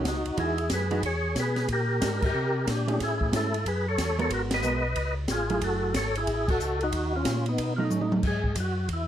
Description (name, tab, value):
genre	soul jazz organ trio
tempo	183 BPM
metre	4/4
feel	swing 64% on 8ths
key	unclear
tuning	A4 = 440 Hz
part	percussive tonewheel organ	melody	0.0-9.1 s	B3 to D#5	-28 LUFS	equal	slow rotary speaker, overdrive, chorus vibrato
part	hollow-body jazz guitar	accompaniment	0.0-8.2 s	E3 to A#4	-31 LUFS	right 4 dB	none
part	mellow tonewheel organ	bass	0.0-9.1 s	F#1 to B#2	-30 LUFS	equal	chorus vibrato, slow rotary speaker
part	open jazz drum kit	drums	0.0-9.0 s	crash cymbal, hi-hat, kick drum, ride cymbal, snare drum, toms	-31 LUFS	equal	none
room	light reverb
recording	none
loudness	-24 LUFS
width	side -10 dB against mid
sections	0.0-8.2 A section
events	band accent 2.2, 4.5, 6.4; drum fill 7.9-8.2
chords	0.4 Emaj9; 1.7 A#13; 3.0 Amaj7; 4.3 G#m9; 5.0 C#7b13; 5.6 F#m9; 6.9 D#5; 7.6 B7; 8.2 E